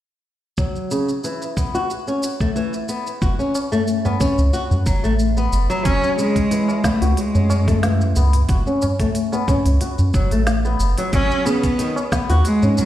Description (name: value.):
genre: organic downtempo.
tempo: 91 BPM.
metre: 4/4.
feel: swing 53% on 16ths.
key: F# dorian.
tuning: A4 = 442 Hz.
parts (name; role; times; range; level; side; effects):
flamenco guitar; arpeggios; 0.6-12.8 s; C#3 to F#4; -22 LUFS; left 2 dB; low-pass filter, digital delay.
electronic kick drum; drums; 0.6-12.3 s; none; -22 LUFS; equal; studio reverb.
organic electronic drum kit; drums; 0.6-12.9 s; hi-hat, shaker, snare drum; -30 LUFS; right 1 dB; studio reverb.
round analog bass; bass; 3.2-12.9 s; F#1 to G#2; -18 LUFS; equal; tube saturation, sidechain pumping.
tabla; percussion; 3.5-12.9 s; none; -27 LUFS; right 1 dB; none.
clear cello; melody; 5.8-12.9 s; F#3 to C#4; -20 LUFS; equal; digital delay.
room: light reverb, small room ambience.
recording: played on a big sound system in a bare room, stone room reverb.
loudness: -16 LUFS.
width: side -13 dB against mid.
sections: 0.6-5.9 A section; 5.9-12.9 B section.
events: filter sweep on nylon-string guitar 0.6-5.9, 5.9-12.9.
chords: 0.6 F#m; 11.1 G#m7.